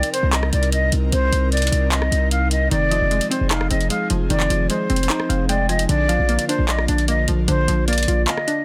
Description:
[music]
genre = hip hop, trap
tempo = 151 BPM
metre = 4/4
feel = half-time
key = F dorian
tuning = A4 = 443 Hz
[part]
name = breathy concert flute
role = melody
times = 0.0-8.6 s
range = C5 to F5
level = -25 LUFS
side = equal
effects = low-pass filter, tape echo
[part]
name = soft round pluck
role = second line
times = 0.0-7.4 s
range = Eb5 to Ab5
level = -36 LUFS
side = equal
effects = chorus, tape echo
[part]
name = airy breathy pad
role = sustained chords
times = 0.0-8.6 s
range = C3 to Bb4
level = -31 LUFS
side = equal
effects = chorus
[part]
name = distorted 808-style bass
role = bass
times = 0.0-8.3 s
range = F1 to C2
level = -22 LUFS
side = equal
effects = distortion
[part]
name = booming analog drum machine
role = drums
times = 0.0-8.6 s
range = handclaps, hi-hat, rim click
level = -27 LUFS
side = equal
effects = none
[part]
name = hollow square pluck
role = accompaniment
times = 2.7-8.6 s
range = D3 to F5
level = -26 LUFS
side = equal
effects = chorus, low-pass filter
[sound]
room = little or no reverb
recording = dense, heavily limited modern master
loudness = -19 LUFS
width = mono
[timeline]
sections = 0.0-8.6 A section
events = break 8.3-8.6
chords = 0.0 Cm7; 2.7 Fm7; 5.9 Bb

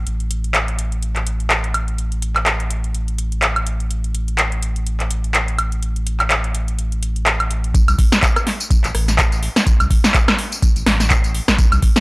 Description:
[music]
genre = acid house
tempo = 125 BPM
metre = 4/4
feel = swing 57% on 16ths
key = A minor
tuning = A4 = 440 Hz
[part]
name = saturated sub bass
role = bass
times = 0.0-11.9 s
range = A1 to C2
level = -20 LUFS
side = equal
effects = sidechain pumping
[part]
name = electro analog drum machine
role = drums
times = 0.1-12.0 s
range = handclaps, hi-hat, rim click, snare drum, tambourine, woodblock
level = -18 LUFS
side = equal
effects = none
[part]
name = electronic kick drum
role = drums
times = 7.7-11.9 s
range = none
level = -15 LUFS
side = equal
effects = none
[sound]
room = little or no reverb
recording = dry, gritty hardware recording, cassette tape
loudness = -15 LUFS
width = side -25 dB against mid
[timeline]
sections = 0.0-7.7 A section; 7.7-12.0 B section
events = drop 7.7-12.0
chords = none

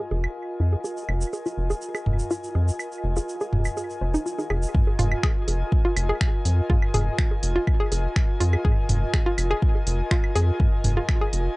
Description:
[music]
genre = minimal techno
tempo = 123 BPM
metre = 4/4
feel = straight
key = F minor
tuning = A4 = 445 Hz
[part]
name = hollow square pluck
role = riff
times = 0.0-11.3 s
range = Eb4 to C5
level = -28 LUFS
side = equal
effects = chorus, sidechain pumping, analog delay
[part]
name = airy breathy pad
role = texture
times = 0.0-11.6 s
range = F4 to Ab5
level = -31 LUFS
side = equal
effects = chorus, sidechain pumping
[part]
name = rubbery square bass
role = bass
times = 0.1-11.5 s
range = F1 to F2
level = -23 LUFS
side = equal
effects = sidechain pumping
[part]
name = electronic bongos, woodblock and toms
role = percussion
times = 0.1-11.2 s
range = none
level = -28 LUFS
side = right 1 dB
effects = none
[part]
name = tube shaker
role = percussion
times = 0.8-4.7 s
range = none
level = -40 LUFS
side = right 2 dB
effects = none
[part]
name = electronic kick drum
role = drums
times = 4.7-11.2 s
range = none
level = -21 LUFS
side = equal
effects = none
[part]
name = minimal click drum kit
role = drums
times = 5.0-11.4 s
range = finger snaps, hi-hat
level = -29 LUFS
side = equal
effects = none
[sound]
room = little or no reverb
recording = dry, gritty hardware recording, cassette tape, nothing above 10.7 kHz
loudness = -21 LUFS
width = side -22 dB against mid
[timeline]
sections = 0.0-4.7 A section; 4.7-11.6 B section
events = filter sweep on synth arpeggio sound 0.0-4.7; drop 4.7-11.6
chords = 0.0 Fm7

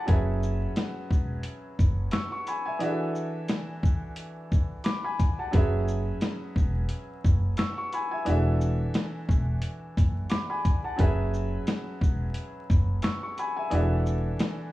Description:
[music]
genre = hip hop, boom-bap hip-hop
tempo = 88 BPM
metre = 4/4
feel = swing 55% on 16ths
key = F# minor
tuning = A4 = 440 Hz
[part]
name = warm baby grand piano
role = accompaniment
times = 0.0-14.7 s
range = E3 to E6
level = -31 LUFS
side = equal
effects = cassette tape, high-pass filter, low-pass filter
[part]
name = upright bass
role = bass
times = 0.1-14.3 s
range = E1 to F#1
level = -27 LUFS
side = equal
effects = none
[part]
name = boom bap sampler-style drum kit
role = drums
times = 0.1-14.6 s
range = hi-hat, kick drum, shaker, snare drum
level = -25 LUFS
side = equal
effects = none
[sound]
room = small room ambience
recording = worn, warbling old tape, cassette tape, vinyl crackle, warbly pitch drift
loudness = -25 LUFS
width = side -16 dB against mid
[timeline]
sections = 0.1-14.7 A section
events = none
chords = 0.1 F#9sus4; 2.8 E9sus4; 5.5 F#9sus4; 8.3 E9sus4; 11.0 F#9sus4; 13.7 E9sus4

